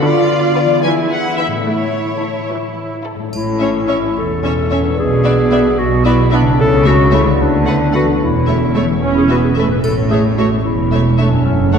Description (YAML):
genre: cinematic, playful, whimsical film cue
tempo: 74 BPM (dotted quarters)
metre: 6/8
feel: straight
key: A major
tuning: A4 = 440 Hz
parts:
  - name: clear studio violin section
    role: melody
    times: 0.0-11.8 s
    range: C#5 to G#5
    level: -23 LUFS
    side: left 4 dB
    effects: none
  - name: rich studio viola section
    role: accompaniment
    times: 0.0-11.8 s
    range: D3 to C#4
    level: -21 LUFS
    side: right 2 dB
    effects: none
  - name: concert harp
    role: arpeggios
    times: 0.0-11.8 s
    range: F#2 to C#5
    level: -20 LUFS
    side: left 5 dB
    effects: none
  - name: rich studio cello section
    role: bass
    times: 0.0-11.8 s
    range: E2 to F4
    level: -18 LUFS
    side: right 2 dB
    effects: none
  - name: clear studio violin section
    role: second line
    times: 0.6-11.8 s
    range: E4 to D5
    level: -25 LUFS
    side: left 2 dB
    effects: none
  - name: clear clarinet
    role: second line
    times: 3.3-11.8 s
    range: C#4 to B4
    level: -17 LUFS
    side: left 2 dB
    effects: none
  - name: rich studio double bass section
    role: bass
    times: 3.3-11.8 s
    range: E1 to D2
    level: -18 LUFS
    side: right 3 dB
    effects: none
  - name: triangle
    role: percussion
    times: 3.3-4.4, 9.8-10.9 s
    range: none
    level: -39 LUFS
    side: right 1 dB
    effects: none
room: wet church reverb, RT60 2.8 s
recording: dark, warm production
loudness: -12 LUFS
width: side -6 dB against mid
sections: 0.0-3.3 A section; 3.3-11.8 A section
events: none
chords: 0.0 Bm7b5/D; 0.8 E; 1.7 A; 5.0 E7/B; 6.6 A/C#; 7.4 Bm7/D; 8.2 A/E; 9.0 E; 9.8 A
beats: | 0.03 0.84 | 1.67 2.50 | 3.33 4.17 | 4.99 5.79 | 6.59 7.39 | 8.21 9.03 | 9.84 10.65 | 11.46